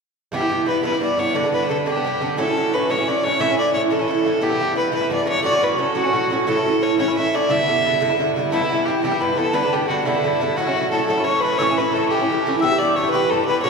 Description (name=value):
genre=celtic folk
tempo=117 BPM (dotted quarters)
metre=6/8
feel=straight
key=E dorian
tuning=A4 = 439 Hz
part: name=rich fiddle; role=melody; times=0.3-13.7 s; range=E4 to E5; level=-20 LUFS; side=left 1 dB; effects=none
part: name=Irish bouzouki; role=accompaniment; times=0.3-13.7 s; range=G2 to G4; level=-20 LUFS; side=right 2 dB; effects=none
part: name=mellow mid whistle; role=second line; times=8.5-13.7 s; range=E5 to E6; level=-24 LUFS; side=left 4 dB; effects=none
room=wet church reverb, RT60 2.8 s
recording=recorded in a church or concert hall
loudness=-17 LUFS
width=side -4 dB against mid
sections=0.3-8.5 A section; 8.5-13.7 A section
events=none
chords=0.3 Em; 1.3 G; 2.4 F#m7; 3.4 A; 4.4 Em; 5.4 F#m; 6.5 A; 7.5 Em7; 8.5 Em; 9.5 G; 10.6 F#m7; 11.6 A; 12.6 Em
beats=| 0.33 0.84 | 1.35 1.86 | 2.37 2.88 | 3.40 3.91 | 4.42 4.93 | 5.45 5.96 | 6.47 6.98 | 7.50 8.01 | 8.52 9.03 | 9.55 10.06 | 10.57 11.08 | 11.60 12.11 | 12.62 13.13 | 13.64